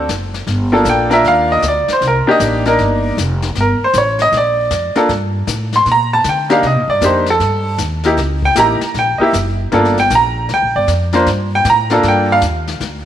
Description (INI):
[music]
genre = jazz piano trio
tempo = 156 BPM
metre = 4/4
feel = swing 65% on 8ths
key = G minor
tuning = A4 = 440 Hz
[part]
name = bright upright piano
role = melody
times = 0.0-12.4 s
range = Bb3 to C6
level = -13 LUFS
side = equal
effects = none
[part]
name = upright bass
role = bass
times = 0.0-13.0 s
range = F1 to D3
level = -19 LUFS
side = equal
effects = none
[part]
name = jazz brush drum kit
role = drums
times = 0.1-13.1 s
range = brushed snare drum, hi-hat, kick drum, snare drum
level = -25 LUFS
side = left 6 dB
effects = none
[sound]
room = moderate echo chamber reverb, RT60 1.9 s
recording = 1960s-style stereo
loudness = -12 LUFS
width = side -10 dB against mid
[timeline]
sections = 0.5-13.1 A section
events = upright piano solo 0.5-13.1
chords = 0.5 Gm7; 2.0 Cm7; 3.6 Gm7; 6.6 Cm7 (rootless); 8.2 C#dim7; 9.7 Gm7